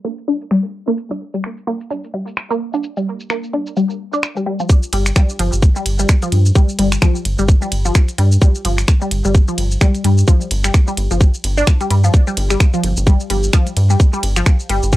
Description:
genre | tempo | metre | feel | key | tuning
minimal techno | 129 BPM | 4/4 | swing 58% on 16ths | G minor | A4 = 441 Hz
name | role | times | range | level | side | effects
resonant blip pluck | riff | 0.0-15.0 s | F3 to D4 | -20 LUFS | left 1 dB | phaser, analog chorus, sidechain pumping, analog delay
minimal click drum kit | drums | 0.0-15.0 s | finger snaps, hi-hat, ride cymbal, shaker | -22 LUFS | equal | overdrive, low-pass filter on perc, low-pass filter on hats, low-pass filter on cymbals, low-pass filter on snare
electronic kick drum | drums | 4.7-15.0 s | none | -11 LUFS | equal | overdrive
rubbery square bass | bass | 4.9-15.0 s | G1 to G2 | -16 LUFS | equal | sidechain pumping
room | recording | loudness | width
little or no reverb | dry, gritty hardware recording, transformer saturation, cassette tape, low-pass filter | -13 LUFS | side -16 dB against mid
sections
0.0-4.7 A section; 4.7-15.0 B section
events
filter sweep on synth arpeggio sound 0.0-4.7; filter sweep 0.0-4.7; drop 4.7-15.0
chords
0.0 G5; 4.7 N.C.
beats
0.04 0.51 | 0.97 1.44 1.91 2.37 | 2.83 3.30 3.77 4.23 | 4.70 5.16 5.63 6.09 | 6.56 7.02 7.49 7.95 | 8.42 8.88 9.35 9.81 | 10.28 10.74 11.21 11.67 | 12.14 12.60 13.07 13.53 | 14.00 14.46 14.93

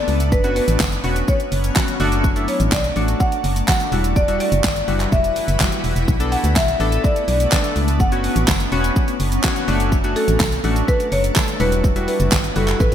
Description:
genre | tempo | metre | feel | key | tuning
dance-pop | 125 BPM | 4/4 | straight | unclear | A4 = 440 Hz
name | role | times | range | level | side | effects
marimba with medium mallets | melody | 0.0-12.9 s | A4 to F#5 | -23 LUFS | equal | ping-pong delay
warm analog keys | accompaniment | 0.0-12.8 s | G3 to A4 | -24 LUFS | left 3 dB | chorus, sidechain pumping
shimmering ambient pad | sustained chords | 0.0-12.9 s | E3 to B4 | -26 LUFS | equal | chorus, built-in reverb, sidechain pumping
organ-like FM bass | bass | 0.1-12.9 s | E1 to D2 | -21 LUFS | equal | sidechain pumping
pop drum kit | drums | 0.1-12.9 s | handclaps, hi-hat, kick drum, shaker, snare drum | -20 LUFS | equal | gated reverb
tambourine | percussion | 0.8-12.4 s | none | -37 LUFS | right 5 dB | none
room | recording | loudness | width
light reverb | bright 1980s-style digital production | -16 LUFS | side -10 dB against mid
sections
0.0-12.9 A section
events
none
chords
0.3 F#sus4; 2.0 D/F#; 3.9 Emadd9; 6.1 Bm7; 8.0 F#sus4; 9.7 D/F#; 11.6 Emadd9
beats
| 0.32 0.80 1.28 1.76 | 2.24 2.72 3.20 3.68 | 4.16 4.64 5.12 5.60 | 6.08 6.56 7.04 7.52 | 8.00 8.48 8.96 9.44 | 9.92 10.40 10.88 11.36 | 11.84 12.32 12.80

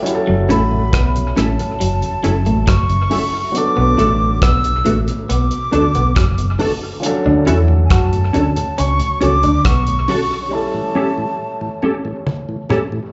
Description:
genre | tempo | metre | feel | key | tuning
lovers rock reggae | 69 BPM | 4/4 | straight | D major | A4 = 440 Hz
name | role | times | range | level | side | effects
warm grand piano | accompaniment | 0.0-13.1 s | F3 to D5 | -27 LUFS | equal | dub echo, slapback echo
damped 70s drum kit | drums | 0.1-12.9 s | hi-hat, kick drum, rim click, toms | -22 LUFS | equal | dub echo
mellow tonewheel organ | accompaniment | 0.3-13.0 s | D2 to E4 | -29 LUFS | equal | slow rotary speaker, dub echo, slapback echo
electric guitar through a small old amp | riff | 0.3-9.9 s | F#3 to F#4 | -23 LUFS | equal | slapback echo
vintage muted fingered electric bass | bass | 0.3-10.1 s | F#1 to F#2 | -19 LUFS | equal | none
breathy mellow silver concert flute | melody | 0.5-11.8 s | G#5 to E6 | -23 LUFS | equal | dub echo, slapback echo
mellow electric guitar | stabs | 0.5-12.8 s | C#4 to A4 | -22 LUFS | equal | ensemble chorus, slapback echo
room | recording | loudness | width
light reverb | live gig heard through the venue's PA, club reverb, nothing above 7.7 kHz | -16 LUFS | mono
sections
0.0-13.1 A section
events
break 10.5-13.1; drum fill 12.3-13.1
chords
0.1 F#m7; 3.5 Bm7; 7.0 Dmaj7; 10.5 A7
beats
| 0.06 0.93 1.80 2.67 | 3.55 4.42 5.29 6.16 | 7.04 7.91 8.78 9.65 | 10.52 11.39 12.27

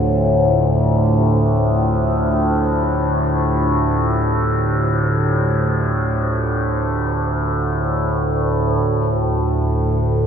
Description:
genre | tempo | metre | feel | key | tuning
dark ambient drone | free time | none | none | D minor | A4 = 440 Hz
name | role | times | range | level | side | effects
dark analog pad | sustained chords | 0.0-10.3 s | D4 to A5 | -28 LUFS | equal | chorus, phaser
dark grand piano | arpeggios | 0.0-8.8 s | none | barely audible | none | none
overtone-sweeping drone | drone | 0.0-10.3 s | D2 to A2 | -16 LUFS | equal | chorus, built-in reverb
room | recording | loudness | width
wet cathedral reverb, RT60 6.1 s | in a vast, echoing space | -16 LUFS | side -7 dB against mid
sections
0.0-8.8 A section; 8.8-10.3 B section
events
fade-out on analog synth pad 0.0-8.8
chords
0.0 Dm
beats
free time

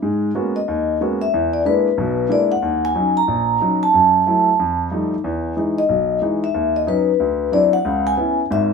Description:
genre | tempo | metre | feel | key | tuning
jazz | 184 BPM | 4/4 | swing 63% on 8ths | G# minor | A4 = 439 Hz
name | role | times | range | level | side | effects
warm grand piano | accompaniment | 0.0-8.7 s | G#1 to F#4 | -20 LUFS | equal | none
vibraphone with soft mallets | melody | 0.6-8.7 s | B4 to A#5 | -17 LUFS | left 1 dB | none
room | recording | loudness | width
moderate small room reverb, RT60 0.5 s | minimal, uncompressed stereo recording | -16 LUFS | side -5 dB against mid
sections
0.0-8.7 A section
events
none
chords
0.0 G#m11; 1.3 E7#11; 2.6 D#m7; 3.9 F#m7; 4.6 F9; 5.2 Emaj7; 6.5 C#m11/D#; 7.2 D9; 7.8 C#m7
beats
| 0.01 0.34 0.67 0.99 | 1.32 1.64 1.97 2.30 | 2.62 2.95 3.28 3.60 | 3.93 4.26 4.58 4.91 | 5.24 5.56 5.89 6.22 | 6.54 6.87 7.20 7.52 | 7.85 8.18 8.50

